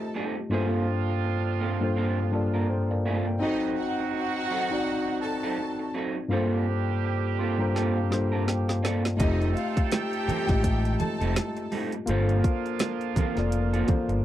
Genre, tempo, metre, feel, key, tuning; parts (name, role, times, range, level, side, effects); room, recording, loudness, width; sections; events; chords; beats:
lush 1970s-style soul; 83 BPM; 4/4; swing 58% on 16ths; G minor; A4 = 440 Hz
warm studio string section; second line; 0.0-11.7 s; Eb4 to A5; -33 LUFS; left 2 dB
tine electric piano; accompaniment; 0.0-14.2 s; G2 to C6; -27 LUFS; left 2 dB; overdrive
electric guitar through a small old amp; riff; 0.0-14.1 s; F#3 to Bb4; -33 LUFS; right 5 dB
clear horn section; stabs; 0.0-14.2 s; Eb3 to A4; -34 LUFS; right 14 dB; slapback echo
garage drum kit; drums; 7.8-14.2 s; hi-hat, kick drum, snare drum; -27 LUFS; equal; overdrive
overdriven fingered electric bass; bass; 9.2-14.2 s; F1 to A1; -26 LUFS; equal
congas; percussion; 9.9-14.1 s; -34 LUFS; right 6 dB
little or no reverb; dry, close 1970s-style studio recording; -24 LUFS; side -12 dB against mid
0.0-14.2 A section
tine electric piano fill 2.0-3.4, 7.0-9.2; drum fill 7.8-9.2
0.0 F9; 0.5 Gm11; 3.4 D7b9; 6.3 Gm11; 9.2 F9; 12.1 Gm11
| 0.52 1.25 1.97 2.69 | 3.42 4.14 4.86 5.59 | 6.31 7.03 7.75 8.48 | 9.20 9.92 10.64 11.36 | 12.09 12.81 13.53 14.25